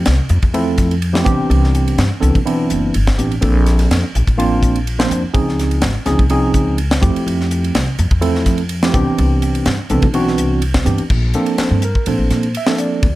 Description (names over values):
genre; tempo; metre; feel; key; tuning
electric jazz fusion; 125 BPM; 4/4; straight; Bb lydian; A4 = 440 Hz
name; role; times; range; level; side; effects
tine electric piano; accompaniment; 0.0-13.2 s; E3 to E5; -17 LUFS; right 2 dB; medium stereo tremolo
upright bass; bass; 0.1-13.2 s; Gb1 to Bb2; -16 LUFS; equal; none
crisp fusion drum kit; drums; 0.1-13.1 s; crash cymbal, hi-hat, kick drum, ride cymbal, snare drum; -19 LUFS; equal; none
room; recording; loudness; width
light reverb; none; -13 LUFS; side -17 dB against mid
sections
0.0-11.1 A section; 11.1-13.2 B section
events
none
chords
0.0 Fmaj9; 1.3 Cmaj9; 3.4 Bbmaj9; 5.3 Dbmaj9; 7.0 Fmaj9; 8.9 Cmaj9; 11.1 Bbmaj9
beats
0.07 0.55 1.03 | 1.51 1.99 2.47 2.95 | 3.43 3.91 4.39 4.87 | 5.35 5.83 6.31 6.79 | 7.27 7.75 8.23 8.71 | 9.19 9.67 10.15 10.63 | 11.11 11.59 12.07 12.55 | 13.03